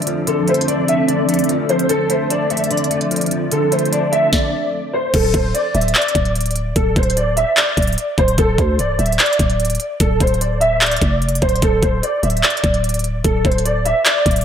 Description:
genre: hip hop, trap.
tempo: 148 BPM.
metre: 4/4.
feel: half-time.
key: D minor.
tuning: A4 = 440 Hz.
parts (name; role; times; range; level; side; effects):
warm concert grand piano; melody; 0.0-14.4 s; A4 to E5; -18 LUFS; equal; ensemble chorus, low-pass filter, tape echo.
semi-hollow electric guitar; accompaniment; 0.0-5.1 s; D3 to D4; -21 LUFS; left 3 dB; ensemble chorus, low-pass filter.
granular cloud pad; sustained chords; 0.0-4.3 s; F3 to A4; -22 LUFS; right 1 dB; built-in reverb.
trap drum kit; drums; 0.0-14.4 s; crash cymbal, handclaps, hi-hat, kick drum, snare drum; -18 LUFS; equal; overdrive.
growling 808-style bass; bass; 5.1-14.4 s; C1 to D2; -19 LUFS; equal; none.
room: moderate lush hall reverb, RT60 1.6 s, digital ambience.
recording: dreamy mix soaked in reverb.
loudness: -14 LUFS.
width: side -8 dB against mid.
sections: 0.0-5.1 A section; 5.1-14.4 B section.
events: stop 4.3-5.1.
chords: 0.0 Dm7; 5.1 N.C.; 8.4 Dm; 11.6 N.C..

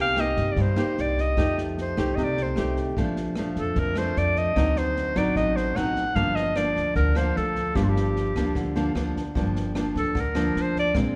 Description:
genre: bossa nova.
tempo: 150 BPM.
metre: 4/4.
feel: straight.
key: G minor.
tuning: A4 = 440 Hz.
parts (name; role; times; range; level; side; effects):
breathy clarinet; melody; 0.0-11.0 s; F4 to F#5; -29 LUFS; equal; none.
nylon-string guitar; accompaniment; 0.0-11.2 s; F2 to G4; -28 LUFS; equal; none.
upright bass; bass; 0.0-11.2 s; G1 to G2; -31 LUFS; equal; none.
open jazz drum kit; drums; 0.2-11.0 s; kick drum, rim click, snare drum; -36 LUFS; equal; none.
room: moderate concert hall reverb, RT60 2.1 s.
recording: recorded in a church or concert hall.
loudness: -25 LUFS.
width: mono.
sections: 0.0-9.4 A section; 9.4-11.2 B section.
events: clarinet solo 9.4-11.2.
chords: 0.0 Cm7; 1.4 F9; 3.0 Bbmaj7; 4.6 D7b9; 6.2 Gm7.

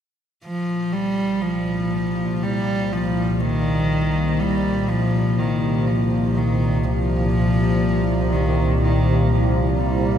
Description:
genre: dark ambient drone.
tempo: 61 BPM.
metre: 4/4.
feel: straight.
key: C minor.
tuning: A4 = 439 Hz.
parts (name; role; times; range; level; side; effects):
warm cello; melody; 0.4-10.2 s; Eb3 to G3; -22 LUFS; equal; tape echo.
dark analog pad; sustained chords; 0.5-10.2 s; C4 to C5; -32 LUFS; left 2 dB; chorus.
organ-like drone; drone; 1.0-10.2 s; C2 to Bb2; -20 LUFS; equal; ensemble chorus, built-in reverb.
room: wet cathedral reverb, RT60 5.7 s.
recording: in a vast, echoing space.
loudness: -18 LUFS.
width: side -9 dB against mid.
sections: 0.5-10.2 A section.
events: fade-in on analog synth pad 0.5-10.2.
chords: 0.5 Cm7.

